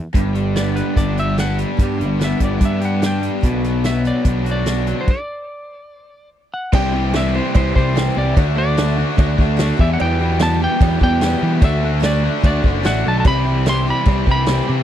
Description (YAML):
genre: classic rock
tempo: 147 BPM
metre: 4/4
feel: straight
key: unclear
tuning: A4 = 440 Hz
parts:
  - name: picked swing-style acoustic guitar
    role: accompaniment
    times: 0.1-14.8 s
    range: E2 to G4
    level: -29 LUFS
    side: right 14 dB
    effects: none
  - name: raw garage guitar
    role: riff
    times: 0.1-14.8 s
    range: E2 to G4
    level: -21 LUFS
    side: left 2 dB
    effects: overdrive
  - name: fuzz picked electric bass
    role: bass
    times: 0.1-14.8 s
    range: F#1 to E3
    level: -19 LUFS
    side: equal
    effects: overdrive
  - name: vintage drum kit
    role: drums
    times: 0.1-14.6 s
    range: crash cymbal, hi-hat, kick drum, snare drum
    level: -17 LUFS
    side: equal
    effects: none
  - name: clean lap steel guitar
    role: melody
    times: 0.6-14.8 s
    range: B4 to C6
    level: -24 LUFS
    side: equal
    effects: none
  - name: warm upright piano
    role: accompaniment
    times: 6.7-14.8 s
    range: F#4 to E5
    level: -31 LUFS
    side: left 15 dB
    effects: none
  - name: cowbell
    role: percussion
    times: 6.7-14.6 s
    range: none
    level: -32 LUFS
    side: right 14 dB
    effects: none
room: little or no reverb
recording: dry, close 1970s-style studio recording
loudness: -15 LUFS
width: side -10 dB against mid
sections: 0.0-6.7 A section; 6.7-14.8 B section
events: stop 5.1-6.7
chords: 0.1 G; 3.4 Bm; 6.7 C; 8.4 D; 9.8 Em; 11.6 D; 13.3 C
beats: | 0.15 0.56 0.97 1.39 | 1.80 2.21 2.62 3.04 | 3.45 3.86 4.27 4.68 | 5.09 5.51 5.92 6.33 | 6.74 7.15 7.55 7.96 | 8.37 8.78 9.19 9.59 | 10.00 10.41 10.81 11.22 | 11.63 12.04 12.44 12.85 | 13.26 13.67 14.07 14.48